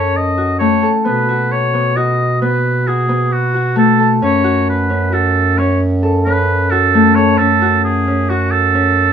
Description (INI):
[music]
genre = contemporary instrumental, contemporary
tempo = 133 BPM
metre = 7/4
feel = straight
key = F# dorian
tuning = A4 = 440 Hz
[part]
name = warm oboe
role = melody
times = 0.0-9.1 s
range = F#4 to D#5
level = -16 LUFS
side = right 2 dB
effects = none
[part]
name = Celtic harp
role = arpeggios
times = 0.0-9.1 s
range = A3 to A4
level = -16 LUFS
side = left 2 dB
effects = none
[part]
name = dark bass clarinet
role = bass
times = 0.0-9.1 s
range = F#2 to B2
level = -17 LUFS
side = right 1 dB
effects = none
[sound]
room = moderate studio reverb, RT60 0.7 s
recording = minimal, uncompressed stereo recording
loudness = -12 LUFS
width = side -8 dB against mid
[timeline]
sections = 0.0-9.1 A section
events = none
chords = 0.0 F#m; 1.1 B7(no3); 4.2 F#m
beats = 0.15 0.61 | 1.06 1.51 1.96 2.41 2.87 3.32 3.77 | 4.22 4.67 5.12 5.58 6.03 6.48 6.93 | 7.38 7.83 8.29 8.74